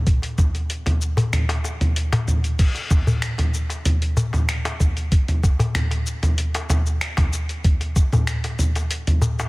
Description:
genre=downtempo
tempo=95 BPM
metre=4/4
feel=straight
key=none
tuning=none
part: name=dusty soul sampler-style drum kit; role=drums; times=0.1-9.5 s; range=crash cymbal, finger snaps, hi-hat, shaker, toms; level=-21 LUFS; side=equal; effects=none
part: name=electronic kick drum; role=drums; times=0.1-8.1 s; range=none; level=-17 LUFS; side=equal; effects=none
part: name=darbuka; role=percussion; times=0.2-9.5 s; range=none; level=-25 LUFS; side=left 1 dB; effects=none
room=little or no reverb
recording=none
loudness=-19 LUFS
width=side -23 dB against mid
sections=0.0-2.6 A section; 2.6-9.5 B section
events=kick drops out 2.0-2.6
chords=none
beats=| 0.07 0.70 1.33 1.96 | 2.59 3.23 3.86 4.49 | 5.12 5.75 6.38 7.01 | 7.65 8.28 8.91

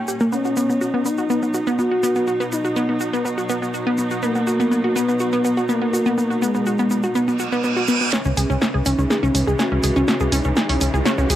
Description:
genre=melodic techno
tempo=123 BPM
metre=4/4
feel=straight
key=unclear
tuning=A4 = 435 Hz
part: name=clear studio string section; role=sustained chords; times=0.0-11.4 s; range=A#2 to D#4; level=-29 LUFS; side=equal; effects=none
part: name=wide unison pluck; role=arpeggios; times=0.0-11.4 s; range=A#3 to G#4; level=-21 LUFS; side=equal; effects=analog delay
part: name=egg shaker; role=percussion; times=0.1-11.4 s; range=none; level=-35 LUFS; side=equal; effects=none
part: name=expressive portamento lead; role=melody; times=0.3-11.0 s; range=G#3 to F#4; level=-24 LUFS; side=equal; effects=chorus
part: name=reverse cymbal and riser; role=sound effects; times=7.4-11.4 s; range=none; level=-28 LUFS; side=right 3 dB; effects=none
part: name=punchy analog drum machine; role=drums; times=8.1-11.4 s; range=hi-hat, snare drum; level=-22 LUFS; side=equal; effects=small room ambience
part: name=plucky analog bass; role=bass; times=8.3-11.4 s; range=C#2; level=-20 LUFS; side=equal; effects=none
room=little or no reverb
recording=dry, gritty hardware recording, cassette tape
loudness=-17 LUFS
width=side -12 dB against mid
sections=0.0-8.1 A section; 8.1-11.4 B section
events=filter sweep on synth arpeggio sound 0.0-8.1; reverse cymbal 7.4-8.1; build-up 8.1-11.4; drum fill 8.1-11.4; filter sweep on analog synth lead 8.1-11.4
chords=0.3 B; 8.1 C#m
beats=| 0.33 0.81 1.30 1.79 | 2.28 2.76 3.25 3.74 | 4.23 4.71 5.20 5.69 | 6.18 6.67 7.15 7.64 | 8.13 8.62 9.11 9.59 | 10.08 10.57 11.06

